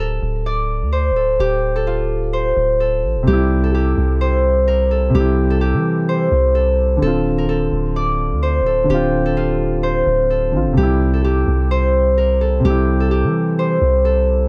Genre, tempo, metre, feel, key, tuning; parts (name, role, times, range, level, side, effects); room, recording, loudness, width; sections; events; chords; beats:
hip hop, trap; 128 BPM; 4/4; half-time; A4 = 440 Hz
Celtic harp; melody; 0.0-14.5 s; F4 to D5; -21 LUFS; equal
long sustained 808-style bass; bass; 0.0-14.5 s; D1 to E3; -21 LUFS; equal
dark grand piano; accompaniment; 3.2-14.5 s; C3 to F4; -23 LUFS; equal
little or no reverb; cassette tape; -17 LUFS; mono
0.0-3.3 A section; 3.3-14.5 B section
0.0 Dm7; 3.3 C; 7.0 Dm7; 10.8 C
0.46 0.93 | 1.40 1.87 2.33 2.80 | 3.27 3.74 4.21 4.68 | 5.15 5.62 6.08 6.55 | 7.02 7.49 7.96 8.43 | 8.90 9.37 9.83 10.30 | 10.77 11.24 11.71 12.18 | 12.65 13.12 13.58 14.05